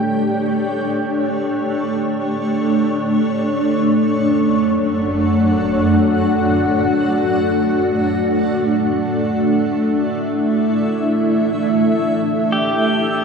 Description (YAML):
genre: ambient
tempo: free time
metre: none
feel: none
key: unclear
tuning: A4 = 440 Hz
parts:
  - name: granular cloud pad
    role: sustained chords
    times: 0.0-13.2 s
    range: F#2 to G5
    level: -15 LUFS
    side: equal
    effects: built-in reverb
  - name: pedal steel guitar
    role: melody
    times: 12.5-13.2 s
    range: G4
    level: -19 LUFS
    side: equal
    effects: none
room: wet cathedral reverb, RT60 5.3 s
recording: dark, warm production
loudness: -15 LUFS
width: side -5 dB against mid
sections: 0.0-13.2 A section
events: none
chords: 0.0 Gsus2; 3.2 Dmaj7/F#; 8.3 Asus4